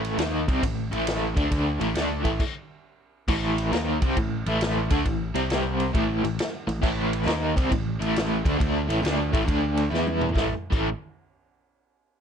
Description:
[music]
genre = blues rock power trio and southern rock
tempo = 136 BPM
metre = 4/4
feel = swing 67% on 8ths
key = unclear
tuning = A4 = 439 Hz
[part]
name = crunchy overdriven guitar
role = riff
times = 0.0-10.9 s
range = A2 to E4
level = -25 LUFS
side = equal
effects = tremolo
[part]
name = modern bright picked electric bass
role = bass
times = 0.0-10.9 s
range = A1 to E2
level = -29 LUFS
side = equal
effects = none
[part]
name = vintage drum kit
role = drums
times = 0.0-10.8 s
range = crash cymbal, kick drum, ride cymbal, snare drum, toms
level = -28 LUFS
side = equal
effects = vintage 12-bit sampler grit
[sound]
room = light reverb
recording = none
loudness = -22 LUFS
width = side -7 dB against mid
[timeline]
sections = 0.0-3.3 A section; 3.3-10.4 A section; 10.4-12.1 B section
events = stop 2.4-3.3; drum fill 9.9-10.4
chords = 0.0 A5; 2.4 N.C.; 3.3 A5; 5.3 C5; 5.9 A5; 9.5 D5; 9.9 E5; 10.4 A5

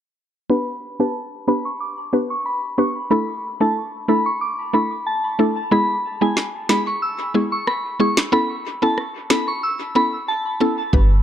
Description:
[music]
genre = dancehall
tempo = 92 BPM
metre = 4/4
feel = straight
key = A major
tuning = A4 = 438 Hz
[part]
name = soft synth bell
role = melody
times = 0.5-10.8 s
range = G#5 to E6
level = -22 LUFS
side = equal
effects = chorus, low-pass filter, dub echo
[part]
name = mallet-like synth pluck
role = accompaniment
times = 0.5-11.2 s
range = G#3 to B4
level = -19 LUFS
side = equal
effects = chorus, sidechain pumping, low-pass filter
[part]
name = afro-pop drum kit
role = drums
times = 6.4-11.1 s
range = kick drum, rim click, snare drum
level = -20 LUFS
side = equal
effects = dub echo
[part]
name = warm 808-style bass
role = bass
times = 10.9-11.2 s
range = G1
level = -15 LUFS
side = equal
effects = none
[sound]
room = moderate spring reverb, RT60 2.7 s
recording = echo-heavy mix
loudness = -18 LUFS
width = side -10 dB against mid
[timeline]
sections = 0.5-10.9 A section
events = filter sweep 0.5-10.9; hi-hats muted 10.9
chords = 0.5 G; 3.1 Dsus2; 5.7 E; 8.3 Aadd9

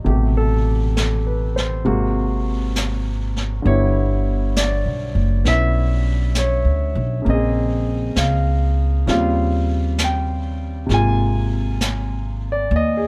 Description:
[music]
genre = jazz ballad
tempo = 66 BPM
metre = 4/4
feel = swing 68% on 8ths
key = unclear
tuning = A4 = 435 Hz
[part]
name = warm concert grand piano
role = accompaniment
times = 0.0-13.1 s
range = B2 to Ab5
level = -24 LUFS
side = equal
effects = none
[part]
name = upright bass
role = bass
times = 0.0-13.1 s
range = Gb1 to Eb2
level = -22 LUFS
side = equal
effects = none
[part]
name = jazz brush drum kit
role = drums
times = 0.1-13.1 s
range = brushed snare drum, hi-hat, snare drum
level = -28 LUFS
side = equal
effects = none
[sound]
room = little or no reverb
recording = close, detailed microphones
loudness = -20 LUFS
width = mono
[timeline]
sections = 0.0-13.1 A section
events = none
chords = 0.1 Am9; 1.9 Ab9; 3.7 G6; 7.3 Bbm9; 9.1 Eb13; 10.9 Ab69

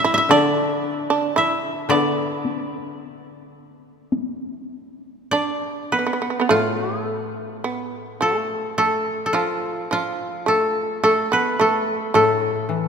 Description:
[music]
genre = japanese traditional, Japanese chamber music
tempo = 49-57 BPM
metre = 4/4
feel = rubato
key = D kumoi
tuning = A4 = 440 Hz
[part]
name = koto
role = melody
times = 0.0-12.9 s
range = F4 to E5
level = -22 LUFS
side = equal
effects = none
[part]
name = shamisen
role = second line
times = 0.0-12.9 s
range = F3 to E4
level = -23 LUFS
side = right 3 dB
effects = none
[part]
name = koto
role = accompaniment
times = 0.3-12.9 s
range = A2 to E3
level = -25 LUFS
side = left 6 dB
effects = none
[part]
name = taiko ensemble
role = percussion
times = 1.9-4.4 s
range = none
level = -30 LUFS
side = left 3 dB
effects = none
[sound]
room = wet church reverb, RT60 3.5 s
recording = minimal, uncompressed stereo recording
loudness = -19 LUFS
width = side -6 dB against mid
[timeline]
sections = 0.0-6.5 A section; 6.5-12.9 B section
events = none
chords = none

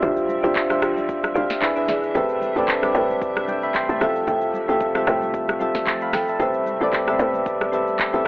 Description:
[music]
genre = amapiano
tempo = 113 BPM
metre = 4/4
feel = swing 55% on 16ths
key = A minor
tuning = A4 = 440 Hz
[part]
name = soft electric-piano-like synth keys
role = accompaniment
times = 0.0-8.3 s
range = B3 to C6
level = -22 LUFS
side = equal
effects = chorus
[part]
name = hollow soft pad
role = sustained chords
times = 0.0-8.3 s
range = C3 to E5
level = -32 LUFS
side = equal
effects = ensemble chorus
[part]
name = marimba with medium mallets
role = stabs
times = 0.0-8.3 s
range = F4 to G5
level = -26 LUFS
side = right 1 dB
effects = analog delay
[part]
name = tight log drum bass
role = bass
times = 0.0-8.3 s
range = A1 to D3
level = -27 LUFS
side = equal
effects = none
[part]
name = afro-pop drum kit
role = drums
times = 0.0-8.3 s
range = handclaps, hi-hat, kick drum, rim click, shaker, snare drum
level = -24 LUFS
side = equal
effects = none
[part]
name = congas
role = percussion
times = 0.0-7.9 s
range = none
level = -38 LUFS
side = equal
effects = none
[sound]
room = little or no reverb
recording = dry, gritty hardware recording, transformer saturation, telephone sound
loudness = -19 LUFS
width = side -22 dB against mid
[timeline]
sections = 0.0-8.3 A section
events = none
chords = 0.0 Dm11; 1.6 E7; 2.2 Am9; 4.0 Fmaj9/A; 6.4 Am9

